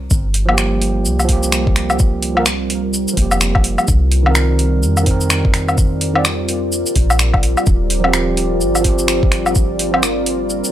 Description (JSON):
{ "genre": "future garage", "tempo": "127 BPM", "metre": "4/4", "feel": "swing 61% on 16ths", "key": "G minor", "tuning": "A4 = 440 Hz", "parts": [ { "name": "deep dark ambient pad", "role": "sustained chords", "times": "0.0-10.7 s", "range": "G3 to D5", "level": "-22 LUFS", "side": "equal", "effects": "chorus, built-in reverb, sidechain pumping" }, { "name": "soft 808-style bass", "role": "bass", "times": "0.0-10.6 s", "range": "Eb1 to F2", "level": "-19 LUFS", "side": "equal", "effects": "sidechain pumping" }, { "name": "electronic kick drum", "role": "drums", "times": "0.1-9.7 s", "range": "none", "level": "-15 LUFS", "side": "equal", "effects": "overdrive" }, { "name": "garage drum kit", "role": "drums", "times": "0.1-10.7 s", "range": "finger snaps, hi-hat, shaker, woodblock", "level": "-18 LUFS", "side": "left 1 dB", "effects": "overdrive" }, { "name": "overdriven tine electric piano", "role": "accompaniment", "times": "0.5-10.0 s", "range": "Eb3 to D5", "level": "-21 LUFS", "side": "right 3 dB", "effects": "sidechain pumping, analog delay" } ], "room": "digital ambience", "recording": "dry, gritty hardware recording, transformer saturation", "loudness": "-13 LUFS", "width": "side -12 dB against mid", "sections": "0.1-10.7 A section", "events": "none", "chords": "0.1 Gm7; 3.9 Cm7; 7.7 Eb69" }